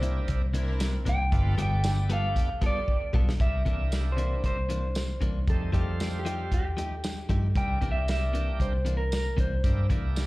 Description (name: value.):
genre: straight-eighth soul blues.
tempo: 116 BPM.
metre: 4/4.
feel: swing 55% on 16ths.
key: C mixolydian.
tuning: A4 = 439 Hz.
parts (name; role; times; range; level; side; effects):
electric guitar through a small old amp; melody; 0.0-9.9 s; G4 to G5; -33 LUFS; equal; harmonic tremolo.
bright tonewheel organ; accompaniment; 0.0-10.3 s; G3 to G4; -38 LUFS; right 3 dB; overdrive, slow rotary speaker, slapback echo.
direct-recorded clean electric guitar; stabs; 0.0-10.1 s; C3 to A4; -37 LUFS; left 4 dB; slapback echo, analog delay.
vintage muted fingered electric bass; bass; 0.0-10.3 s; F1 to G2; -27 LUFS; equal; none.
warm soul drum kit; drums; 0.0-10.3 s; hi-hat, kick drum, snare drum, tambourine; -29 LUFS; equal; none.
warm studio string section; sustained chords; 0.6-3.3 s; B3 to Bb4; -42 LUFS; left 1 dB; none.
room: studio ambience.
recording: live gig heard through the venue's PA, club reverb.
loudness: -25 LUFS.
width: side -20 dB against mid.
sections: 0.0-3.4 A section; 3.4-10.3 B section.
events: clean electric guitar solo 0.0-3.4; drum fill 2.9-3.4.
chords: 0.0 C9; 1.3 G9; 3.4 C9; 5.5 F9; 7.6 C9.